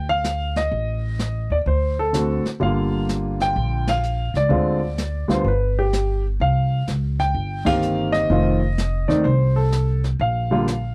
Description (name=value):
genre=jazz piano trio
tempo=126 BPM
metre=4/4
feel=swing 66% on 8ths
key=unclear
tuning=A4 = 440 Hz
part: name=warm concert grand piano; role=melody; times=0.0-10.9 s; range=D3 to G5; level=-24 LUFS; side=equal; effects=none
part: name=upright bass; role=bass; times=0.0-10.9 s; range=F1 to Eb2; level=-24 LUFS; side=equal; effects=none
part: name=jazz brush drum kit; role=drums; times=0.2-10.9 s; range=brushed snare drum, hi-hat, kick drum, ride cymbal, snare drum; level=-32 LUFS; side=equal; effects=none
room=little or no reverb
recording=dry, close 1970s-style studio recording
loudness=-21 LUFS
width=mono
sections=0.0-10.9 A section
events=band accent 3.8, 7.6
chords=0.0 Bb (rootless); 0.7 N.C.; 1.7 D7; 2.6 Gm7; 4.5 Dm7b5; 5.5 G; 6.4 Cm7; 8.3 F7; 10.2 Bb